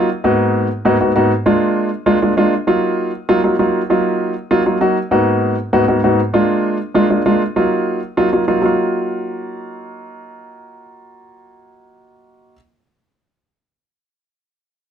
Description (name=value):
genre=jazz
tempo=196 BPM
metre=4/4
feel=straight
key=Eb harmonic minor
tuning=A4 = 445 Hz
part: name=warm grand piano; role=solo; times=0.0-12.6 s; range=Ab2 to Gb4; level=-14 LUFS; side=equal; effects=none
room=light reverb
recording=close, detailed microphones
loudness=-13 LUFS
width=side -8 dB against mid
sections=0.0-8.6 A section; 8.6-11.1 B section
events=none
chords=0.1 Abm7; 1.3 Bb7; 2.5 Ebmadd9; 5.0 Abm7; 6.2 Bb7; 7.4 Ebmadd9